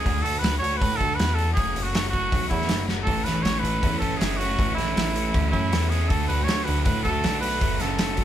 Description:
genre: indie rock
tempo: 159 BPM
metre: 4/4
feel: straight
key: A major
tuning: A4 = 438 Hz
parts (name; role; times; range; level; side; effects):
- clear trumpet; melody; 0.0-8.2 s; E4 to C#5; -27 LUFS; right 3 dB; none
- sludgy distorted guitar; riff; 0.0-8.2 s; E3 to F#4; -30 LUFS; left 8 dB; overdrive
- chorused synth bass; bass; 0.0-8.2 s; F#1 to A2; -27 LUFS; equal; none
- loose indie drum kit; drums; 0.1-8.2 s; hi-hat, kick drum, snare drum; -26 LUFS; equal; none
- overdriven electric guitar; riff; 3.1-8.2 s; F#2 to E4; -30 LUFS; right 4 dB; none
room: light reverb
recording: band playing live in one room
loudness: -21 LUFS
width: side -11 dB against mid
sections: 0.0-8.2 A section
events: drum fill 2.9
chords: 0.1 D; 1.6 F#m; 3.1 A; 6.1 D; 7.6 F#m

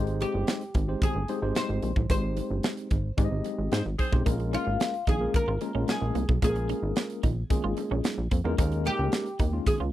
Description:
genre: early-eighties boogie funk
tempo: 111 BPM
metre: 4/4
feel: straight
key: Bb dorian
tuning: A4 = 440 Hz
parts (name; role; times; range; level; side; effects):
- tine electric piano; accompaniment; 0.0-9.8 s; Ab3 to Eb5; -32 LUFS; left 3 dB; medium stereo tremolo
- plucky analog bass; bass; 0.0-9.9 s; G1 to Ab2; -29 LUFS; equal; none
- modern studio drum kit; drums; 0.1-9.8 s; hi-hat, kick drum, snare drum; -27 LUFS; equal; none
- oud; melody; 0.2-9.7 s; F4 to C5; -32 LUFS; left 1 dB; slapback echo
- congas; percussion; 0.2-9.8 s; none; -39 LUFS; right 10 dB; none
- warm horn section; second line; 3.7-4.2 s; C4 to C5; -33 LUFS; right 1 dB; none
- semi-hollow electric guitar; riff; 4.3-9.9 s; Bb3 to F4; -35 LUFS; right 9 dB; analog chorus
room: little or no reverb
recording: dry, close 1970s-style studio recording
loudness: -25 LUFS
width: side -14 dB against mid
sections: 0.0-9.9 A section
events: band accent 2.1-4.3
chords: 0.0 Abmaj7; 4.3 Bbm7; 8.6 Eb7sus4

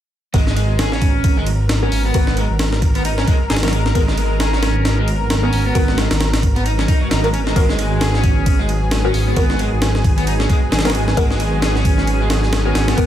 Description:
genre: breakbeat, breaks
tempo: 133 BPM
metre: 4/4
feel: swing 58% on 16ths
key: G# minor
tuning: A4 = 442 Hz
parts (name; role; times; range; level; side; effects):
- lush unison pad; sustained chords; 0.3-13.1 s; F#3 to A#4; -25 LUFS; equal; chorus, sidechain pumping
- crunchy overdriven guitar; riff; 0.3-13.1 s; F#3 to G#4; -23 LUFS; right 1 dB; vintage 12-bit sampler grit, digital delay
- band-passed chord stab; stabs; 0.3-13.0 s; B3 to A#4; -24 LUFS; left 2 dB; phaser, lush chorus, digital delay
- dark detuned saw bass; bass; 0.3-13.1 s; G#1; -18 LUFS; equal; none
- breakbeat sampler-style drum kit; drums; 0.3-13.1 s; hi-hat, kick drum, ride cymbal, snare drum; -18 LUFS; equal; none
room: little or no reverb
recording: none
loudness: -14 LUFS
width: side -11 dB against mid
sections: 0.3-13.1 A section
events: none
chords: 0.3 G#m9

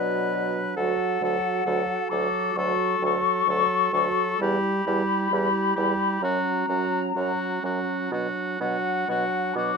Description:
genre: classical, slow romantic movement for wind quintet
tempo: 62-68 BPM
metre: 4/4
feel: rubato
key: unclear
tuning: A4 = 437 Hz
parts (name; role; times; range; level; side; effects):
- mellow hollow silver concert flute; melody; 0.0-9.8 s; D5 to D6; -26 LUFS; left 5 dB; none
- clear oboe; second line; 0.0-9.8 s; F#4 to B4; -29 LUFS; left 2 dB; none
- mellow clarinet; accompaniment; 0.0-9.8 s; C#4 to F#4; -32 LUFS; right 10 dB; none
- warm French horn; accompaniment; 0.0-9.8 s; F#3 to G3; -30 LUFS; right 2 dB; none
- warm bassoon; bass; 0.0-9.7 s; D2 to B2; -30 LUFS; right 3 dB; none
room: light reverb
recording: minimal, uncompressed stereo recording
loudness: -22 LUFS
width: side -5 dB against mid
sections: 0.0-9.8 A section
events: none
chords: 0.0 Bm; 0.8 D; 4.4 Em; 6.2 F#; 8.1 Bm

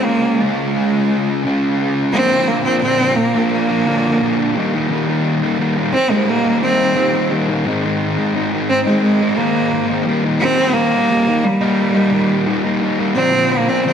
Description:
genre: rock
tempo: 87 BPM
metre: 4/4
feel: straight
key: Bb mixolydian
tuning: A4 = 440 Hz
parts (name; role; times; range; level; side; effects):
- clear cello; melody; 0.0-13.9 s; G3 to C4; -16 LUFS; right 1 dB; none
- fuzz guitar; riff; 0.0-13.9 s; Ab2 to F4; -17 LUFS; left 1 dB; distortion, slapback echo
room: wet lush hall reverb, RT60 2.2 s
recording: big arena sound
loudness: -14 LUFS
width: side -8 dB against mid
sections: 0.0-2.1 A section; 2.1-13.9 B section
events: none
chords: 0.0 Db; 2.1 Bb; 4.6 Eb; 7.7 Abadd9; 10.1 Eb; 13.2 Bb

